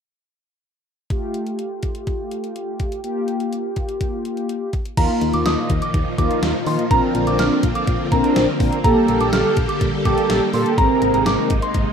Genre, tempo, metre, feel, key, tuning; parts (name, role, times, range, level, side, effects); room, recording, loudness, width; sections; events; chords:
synth-pop; 124 BPM; 4/4; straight; A4 = 440 Hz
mellow synth brass; accompaniment; 1.1-11.5 s; A3 to Bb4; -20 LUFS; equal; chorus, plate reverb
gated 80s digital drum machine; drums; 1.1-11.9 s; crash cymbal, hi-hat, kick drum, snare drum; -22 LUFS; equal; gated reverb, gated reverb snare, overdrive
soft synth bell; second line; 5.0-11.7 s; Bb5 to F6; -24 LUFS; right 2 dB; chorus, tape echo, plate reverb
string machine, violas; sustained chords; 5.0-11.9 s; Bb2 to A4; -23 LUFS; equal; ensemble chorus, plate reverb
solid FM bass; bass; 5.0-11.9 s; Ab1 to Eb3; -24 LUFS; equal
wet small room reverb, RT60 0.5 s; rough home demo mix; -17 LUFS; side -7 dB against mid
1.1-5.0 A section; 5.0-11.9 B section
1.1 Fadd9; 3.0 Gm7; 4.7 N.C.; 5.0 Ebsus2; 6.9 Bbadd9; 8.8 Gmadd9/Bb; 10.8 Abadd9